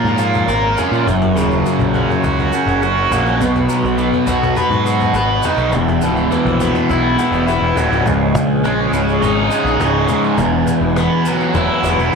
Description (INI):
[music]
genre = psychedelic rock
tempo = 103 BPM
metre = 4/4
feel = straight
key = C# dorian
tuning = A4 = 441 Hz
[part]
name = tonewheel organ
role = sustained chords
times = 0.0-12.2 s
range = A#4 to B5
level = -26 LUFS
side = right 7 dB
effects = chorus vibrato, stopped rotary speaker
[part]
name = cranked stack guitar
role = riff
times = 0.0-12.2 s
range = C#2 to B4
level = -14 LUFS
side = equal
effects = overdrive, phaser
[part]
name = fuzz picked electric bass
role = bass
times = 0.0-12.1 s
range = C#1 to A#2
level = -20 LUFS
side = equal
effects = overdrive
[part]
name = cajon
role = drums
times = 0.1-11.7 s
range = none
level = -26 LUFS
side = left 4 dB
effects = none
[part]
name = tube shaker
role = percussion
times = 0.2-12.1 s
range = none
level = -38 LUFS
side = left 12 dB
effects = none
[sound]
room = light reverb, small room ambience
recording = 1960s-style stereo with parts hard left and right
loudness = -13 LUFS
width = side -5 dB against mid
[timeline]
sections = 0.0-8.1 A section; 8.1-12.2 B section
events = drum fill 6.9-8.1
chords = 0.0 A#m; 1.1 F#; 3.4 B; 5.7 Emadd9; 8.1 C#sus2; 10.4 Eadd9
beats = 0.49 | 1.07 1.66 2.24 2.82 | 3.40 3.98 4.57 5.15 | 5.73 6.31 6.89 7.47 | 8.06 8.64 9.22 9.80 | 10.38 10.96 11.55 12.13